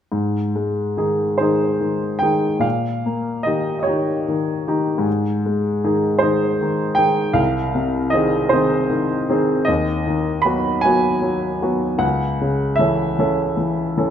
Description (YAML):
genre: classical, romantic nocturne for solo piano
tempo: 47-53 BPM (dotted quarters)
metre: 6/8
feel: rubato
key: Ab major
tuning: A4 = 439 Hz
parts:
  - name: clear grand piano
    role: solo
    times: 0.1-14.1 s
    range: C2 to B5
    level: -17 LUFS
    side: equal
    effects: none
room: wet recital hall reverb, RT60 1.9 s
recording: close, detailed microphones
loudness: -17 LUFS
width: side -9 dB against mid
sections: 0.1-14.1 A section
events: none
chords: 0.1 Ab; 2.6 Eb7/Bb; 5.1 Ab; 7.4 Ab/C; 9.7 B/D#; 12.0 A/C#